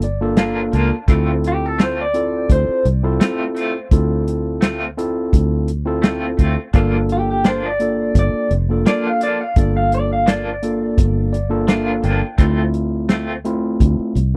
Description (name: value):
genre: straight-eighth soul blues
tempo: 85 BPM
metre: 4/4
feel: straight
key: D minor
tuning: A4 = 439 Hz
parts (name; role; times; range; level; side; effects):
- overdriven tine electric piano; accompaniment; 0.0-14.4 s; A3 to A5; -24 LUFS; equal; none
- fingered electric bass; bass; 0.0-14.4 s; F1 to D2; -22 LUFS; equal; none
- warm soul drum kit; drums; 0.0-14.3 s; hi-hat, kick drum, snare drum; -17 LUFS; equal; none
- electric guitar through a small old amp; stabs; 0.4-13.3 s; F3 to F4; -26 LUFS; equal; tremolo
- electric guitar through a small old amp; melody; 1.5-2.9, 7.1-12.4 s; G4 to F5; -23 LUFS; equal; tremolo
room: light reverb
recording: dry, close 1970s-style studio recording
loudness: -18 LUFS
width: mono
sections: 0.0-14.4 A section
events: tine electric piano fill 0.0-1.1, 11.0-12.4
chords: 0.0 Gm7; 1.1 Dm7; 6.7 Gm7; 12.4 Dm7